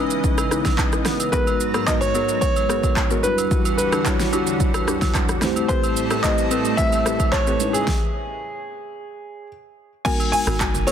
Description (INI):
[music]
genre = amapiano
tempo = 110 BPM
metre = 4/4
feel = straight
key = unclear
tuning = A4 = 435 Hz
[part]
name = warm grand piano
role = melody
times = 0.0-10.9 s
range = G#4 to G#5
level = -25 LUFS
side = equal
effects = tape echo
[part]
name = mellow tine electric piano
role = accompaniment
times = 0.0-10.9 s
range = G3 to C#5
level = -25 LUFS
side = equal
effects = medium stereo tremolo
[part]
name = lush unison pad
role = sustained chords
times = 0.0-7.9 s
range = E2 to A#5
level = -27 LUFS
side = right 1 dB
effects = chorus, sidechain pumping
[part]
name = mallet-like synth pluck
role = stabs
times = 0.0-10.9 s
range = B3 to B4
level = -29 LUFS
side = left 5 dB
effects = chorus, tape echo
[part]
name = deep house drum kit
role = drums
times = 0.1-10.9 s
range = crash cymbal, handclaps, hi-hat, kick drum, rim click, shaker, snare drum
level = -22 LUFS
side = equal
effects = overdrive
[part]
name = agogo bells and woodblock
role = percussion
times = 0.4-10.9 s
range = none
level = -31 LUFS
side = right 6 dB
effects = none
[part]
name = deep log drum bass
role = bass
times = 10.5-10.9 s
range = F#1 to G#1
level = -24 LUFS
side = equal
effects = none
[sound]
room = digital ambience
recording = dense, heavily limited modern master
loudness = -18 LUFS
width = side -8 dB against mid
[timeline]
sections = 0.0-10.1 A section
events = stop 7.9-10.1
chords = 0.0 C#m9; 1.3 G#m9; 3.2 Em9; 5.4 Am9; 7.6 C#m9; 10.1 G#m9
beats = 0.24 0.78 | 1.33 1.88 2.42 2.97 | 3.51 4.06 4.60 5.15 | 5.69 6.24 6.78 7.33 | 7.88 8.42 8.97 9.51 | 10.06 10.60